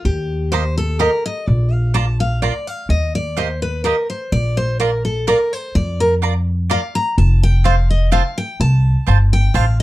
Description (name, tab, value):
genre	bluegrass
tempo	126 BPM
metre	3/4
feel	swing 53% on 8ths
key	Bb major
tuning	A4 = 440 Hz
part	picked steel-string acoustic guitar	accompaniment	0.0-9.8 s	G4 to Bb5	-20 LUFS	left 1 dB	none
part	upright bass	bass	0.0-9.8 s	F1 to F2	-16 LUFS	equal	none
part	mandolin	stabs	0.5-9.6 s	Bb3 to Bb5	-21 LUFS	right 8 dB	none
room	light reverb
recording	dark, warm production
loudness	-15 LUFS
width	side -16 dB against mid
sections	0.0-9.8 A section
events	steel-string acoustic guitar solo 0.0-9.8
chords	0.0 Eb; 1.5 Bb; 2.9 Eb; 4.3 Bb; 7.2 F